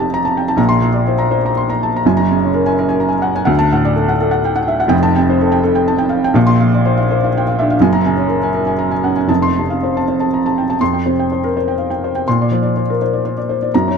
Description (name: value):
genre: neoclassical minimalist piano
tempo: 124 BPM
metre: 3/4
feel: rubato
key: F major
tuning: A4 = 444 Hz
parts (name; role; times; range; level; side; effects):
- felt-muted upright piano; solo; 0.0-14.0 s; F1 to C6; -13 LUFS; equal; slapback echo
room: light reverb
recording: dark, warm production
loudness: -13 LUFS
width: side -6 dB against mid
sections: 0.0-10.8 A section; 10.8-14.0 B section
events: none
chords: 0.0 Fadd9; 0.6 Bbadd9; 2.0 Gbadd9; 3.5 D; 4.9 Fadd9; 6.4 Bbadd9; 7.8 Gbadd9; 9.3 F; 10.8 Fsus2; 12.3 Bbadd9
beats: 0.09 | 0.57 1.06 1.55 | 2.04 2.52 3.01 | 3.49 3.98 4.46 | 4.93 5.41 5.88 | 6.36 6.84 7.32 | 7.80 8.28 8.78 | 9.28 9.79 10.30 | 10.80 11.29 11.78 | 12.26 12.74 13.23 | 13.72